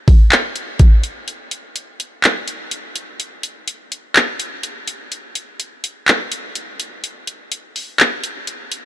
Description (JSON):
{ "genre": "hip hop", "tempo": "125 BPM", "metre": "4/4", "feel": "half-time", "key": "none", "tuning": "none", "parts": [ { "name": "smooth R&B drum kit", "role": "drums", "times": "0.1-8.8 s", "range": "handclaps, hi-hat, kick drum", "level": "-15 LUFS", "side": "equal", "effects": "none" } ], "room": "little or no reverb", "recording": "dark, warm production", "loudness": "-16 LUFS", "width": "side -14 dB against mid", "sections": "0.0-8.8 A section", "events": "break 1.3-8.8", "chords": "none", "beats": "0.32 0.80 | 1.28 1.76 2.24 2.72 | 3.20 3.68 4.16 4.64 | 5.12 5.60 6.08 6.56 | 7.04 7.52 8.00 8.48" }